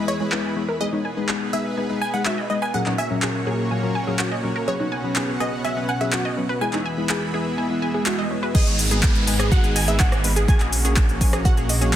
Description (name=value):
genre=progressive house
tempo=124 BPM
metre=4/4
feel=straight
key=G# minor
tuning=A4 = 439 Hz
part: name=wide unison pluck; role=melody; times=0.0-12.0 s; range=C#5 to G#5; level=-29 LUFS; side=right 1 dB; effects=sidechain pumping
part: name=supersaw pad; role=sustained chords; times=0.0-12.0 s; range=A#2 to B5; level=-29 LUFS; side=right 1 dB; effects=sidechain pumping
part: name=deep mellow chord stab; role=stabs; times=0.0-12.0 s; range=A#2 to E5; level=-26 LUFS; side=left 3 dB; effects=chorus, sidechain pumping, digital delay
part: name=wide unison pluck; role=arpeggios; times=0.1-12.0 s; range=G#3 to G#5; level=-29 LUFS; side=right 1 dB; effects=sidechain pumping, digital delay
part: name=big-room dance drum kit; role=drums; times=0.3-12.0 s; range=cabasa, crash cymbal, handclaps, hi-hat, rim click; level=-26 LUFS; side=equal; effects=low-pass filter on snare, low-pass filter on hats, low-pass filter on cymbals, low-pass filter on perc, low-pass filter on room
part: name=swell and downlifter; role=sound effects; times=7.8-12.0 s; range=none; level=-29 LUFS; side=right 3 dB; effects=none
part: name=soft synth bell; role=second line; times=8.5-12.0 s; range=D#5 to G#5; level=-36 LUFS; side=right 1 dB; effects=none
part: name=dark detuned saw bass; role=bass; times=8.5-12.0 s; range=G#1 to A#1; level=-23 LUFS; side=equal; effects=sidechain pumping
part: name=electronic kick drum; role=drums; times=8.5-12.0 s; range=none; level=-18 LUFS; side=equal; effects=none
room=light reverb, digital ambience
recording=dense, heavily limited modern master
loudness=-19 LUFS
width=side -11 dB against mid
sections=0.0-8.5 A section; 8.5-12.0 B section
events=filter sweep on synth pluck 0.0-8.5; swell 7.8-8.5; drop 8.5-12.0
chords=0.0 E; 0.8 G#m; 2.7 F#/A#; 4.7 Bsus2; 6.6 E; 8.5 G#m; 10.5 F#/A#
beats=0.32 | 0.81 1.29 1.77 2.26 | 2.74 3.23 3.71 4.19 | 4.68 5.16 5.64 6.13 | 6.61 7.10 7.58 8.06 | 8.55 9.03 9.52 10.00 | 10.48 10.97 11.45 11.94